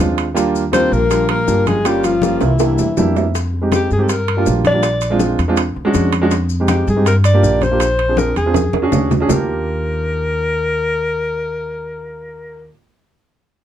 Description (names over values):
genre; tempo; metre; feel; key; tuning
Afro-Cuban jazz; 161 BPM; 4/4; straight; Eb major; A4 = 439 Hz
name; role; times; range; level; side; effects
warm concert grand piano; accompaniment; 0.0-12.7 s; G3 to G5; -18 LUFS; right 3 dB; none
upright bass; bass; 0.0-12.7 s; G1 to G2; -19 LUFS; equal; none
bongos; percussion; 0.2-9.4 s; none; -27 LUFS; left 8 dB; none
congas; percussion; 0.2-9.4 s; none; -23 LUFS; left 3 dB; none
maracas; percussion; 0.2-9.4 s; none; -32 LUFS; left 8 dB; none
timbales; percussion; 0.2-9.4 s; none; -23 LUFS; right 8 dB; none
breathy alto saxophone; melody; 0.7-12.7 s; Fb4 to D5; -19 LUFS; left 2 dB; none
clear tenor saxophone; second line; 0.8-3.2 s; Fb3 to C4; -22 LUFS; left 8 dB; none
room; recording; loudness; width
light reverb; dark, warm production; -14 LUFS; side -10 dB against mid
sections
0.0-3.3 A section; 3.3-9.3 B section; 9.3-12.3 C section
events
drum fill 2.4-3.3, 8.2-9.3; grand piano fill 2.8-3.3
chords
0.4 Ebmaj7; 1.9 Gm7b5; 2.6 C7; 3.3 Fm7; 4.1 Gm7; 4.8 Bb7; 5.6 E13; 6.3 Fm7; 7.1 Gm7; 7.8 Bb7; 8.6 E13; 9.3 Ebmaj7